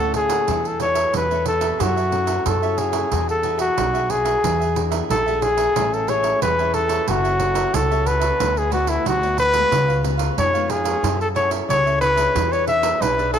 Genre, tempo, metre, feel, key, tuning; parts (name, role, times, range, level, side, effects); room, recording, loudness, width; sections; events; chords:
samba and choro; 91 BPM; 4/4; straight; A4 = 440 Hz
breathy trumpet; melody; 0.0-13.4 s; E4 to E5; -19 LUFS; left 1 dB; tape echo
cavaquinho; accompaniment; 0.0-13.4 s; D4 to G#5; -31 LUFS; right 11 dB
nylon-string guitar; accompaniment; 0.0-13.4 s; G#2 to B4; -29 LUFS; left 13 dB
upright bass; bass; 0.0-13.4 s; F#1 to F#2; -25 LUFS; left 1 dB
pandeiro; percussion; 0.1-13.4 s; -26 LUFS; right 11 dB
light reverb, studio reverb; 1960s-style stereo with parts hard left and right; -17 LUFS; side -8 dB against mid
0.0-13.4 A section
0.5 E7sus4; 1.8 F#m7; 3.1 E9; 5.8 Amaj7; 7.1 F#m7; 8.4 D6; 9.7 C#7; 11.0 F#m7; 12.4 E7